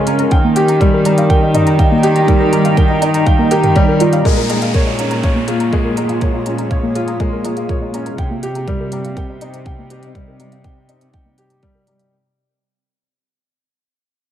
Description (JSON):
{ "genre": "piano and strings electronica", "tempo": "122 BPM", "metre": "4/4", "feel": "straight", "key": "Bb dorian", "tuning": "A4 = 438 Hz", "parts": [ { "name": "granular cloud pad", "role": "sustained chords", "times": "0.0-12.1 s", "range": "Bb3 to C6", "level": "-23 LUFS", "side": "equal", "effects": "built-in reverb, sidechain pumping" }, { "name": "soft round pluck", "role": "arpeggios", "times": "0.0-12.1 s", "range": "Bb3 to Bb5", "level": "-21 LUFS", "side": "right 2 dB", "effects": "chorus, sidechain pumping, digital delay" }, { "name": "warm upright piano", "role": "riff", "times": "0.0-12.1 s", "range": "G3 to G5", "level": "-17 LUFS", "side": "left 1 dB", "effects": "digital delay" }, { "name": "warm symphonic cello section", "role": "bass", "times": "0.0-12.1 s", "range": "Bb2 to Eb3", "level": "-19 LUFS", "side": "equal", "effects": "sidechain pumping" }, { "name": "organic electronic drum kit", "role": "drums", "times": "0.1-12.1 s", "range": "hi-hat, toms", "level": "-25 LUFS", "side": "right 1 dB", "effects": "small room ambience" }, { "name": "electronic kick drum", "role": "drums", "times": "0.3-11.7 s", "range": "none", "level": "-15 LUFS", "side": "equal", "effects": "small room ambience" }, { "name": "downlifter", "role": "sound effects", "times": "4.3-8.2 s", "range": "none", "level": "-27 LUFS", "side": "left 1 dB", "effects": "none" } ], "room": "moderate lush hall reverb, RT60 2.3 s", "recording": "dark, warm production", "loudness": "-12 LUFS", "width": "side -10 dB against mid", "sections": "0.0-4.2 A section; 4.2-12.1 B section", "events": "drop 0.0-4.2; fade-out 4.2-12.1; filter sweep on cello section 4.2-12.1; filter sweep on ambient pad 4.2-12.1", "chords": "0.3 Eb; 4.2 Bbm7; 8.2 Cm" }